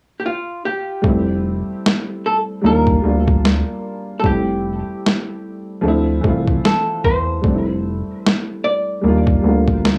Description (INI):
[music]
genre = lo-fi hip hop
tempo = 75 BPM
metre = 4/4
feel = swing 58% on 16ths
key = F major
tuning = A4 = 438 Hz
[part]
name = archtop guitar, miked and amplified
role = melody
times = 0.2-9.8 s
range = F4 to D5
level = -24 LUFS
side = equal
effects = low-pass filter, analog delay
[part]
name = dark upright piano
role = accompaniment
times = 1.0-10.0 s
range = E3 to F4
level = -22 LUFS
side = equal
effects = cassette tape, low-pass filter
[part]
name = fat analog bass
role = bass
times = 1.0-10.0 s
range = F1 to E2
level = -22 LUFS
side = equal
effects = none
[part]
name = boom bap sampler-style drum kit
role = drums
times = 1.0-10.0 s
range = kick drum, snare drum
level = -19 LUFS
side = equal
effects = overdrive
[sound]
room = moderate small room reverb, RT60 0.5 s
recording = small room ambience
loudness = -18 LUFS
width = mono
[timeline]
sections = 0.0-1.0 A section; 1.0-10.0 B section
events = hi-hats muted 1.0-10.0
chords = 0.0 N.C.; 1.0 Fmaj9; 2.6 Ebmaj9; 4.2 Fmaj9; 5.8 Dm9; 7.4 Fmaj9; 9.0 Ebmaj9